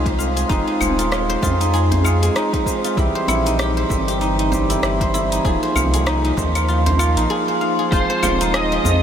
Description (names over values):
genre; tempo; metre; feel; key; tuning
organic downtempo; 97 BPM; 4/4; swing 58% on 16ths; F minor; A4 = 440 Hz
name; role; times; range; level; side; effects
barky tine electric piano; accompaniment; 0.0-9.0 s; E3 to Ab4; -24 LUFS; right 4 dB; sidechain pumping, analog delay
guzheng; arpeggios; 0.0-9.0 s; Eb4 to F5; -20 LUFS; left 1 dB; analog delay
warm sub bass; bass; 0.0-9.0 s; Eb1 to F2; -21 LUFS; equal; sidechain pumping
deep house drum kit; drums; 0.1-9.0 s; claves, hi-hat, rim click, shaker; -27 LUFS; left 1 dB; none
electronic kick drum; drums; 0.1-8.1 s; none; -22 LUFS; equal; none
djembe; percussion; 0.2-9.0 s; none; -29 LUFS; right 2 dB; none
overdriven slide guitar; melody; 7.9-9.0 s; C5 to Eb5; -21 LUFS; equal; ensemble chorus
room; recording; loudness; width
wet huge ambient reverb, RT60 7.0 s; dreamy mix soaked in reverb; -16 LUFS; side -8 dB against mid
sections
0.0-7.9 A section; 7.9-9.0 B section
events
break 7.3-7.9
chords
0.0 Fm; 3.0 C; 5.4 Ebsus2; 7.9 Fm